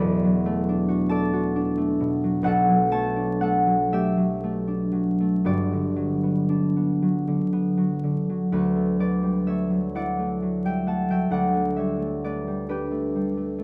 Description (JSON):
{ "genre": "classical, solo harp piece", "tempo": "38-46 BPM (dotted quarters)", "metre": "6/8", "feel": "rubato", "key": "D major", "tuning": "A4 = 438 Hz", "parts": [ { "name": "concert harp", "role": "solo", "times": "0.0-13.6 s", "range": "E1 to D6", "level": "-24 LUFS", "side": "equal", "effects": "none" } ], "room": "light reverb", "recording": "close, detailed microphones, vinyl crackle", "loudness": "-24 LUFS", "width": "mono", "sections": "0.0-8.5 A section; 8.5-13.6 B section", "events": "none", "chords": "0.0 E9sus4; 2.5 Bm7; 5.5 Gmaj7; 8.5 D69", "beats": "1.12 | 2.48 3.92 | 5.46 7.03 | 8.52 9.93 | 11.30 12.68" }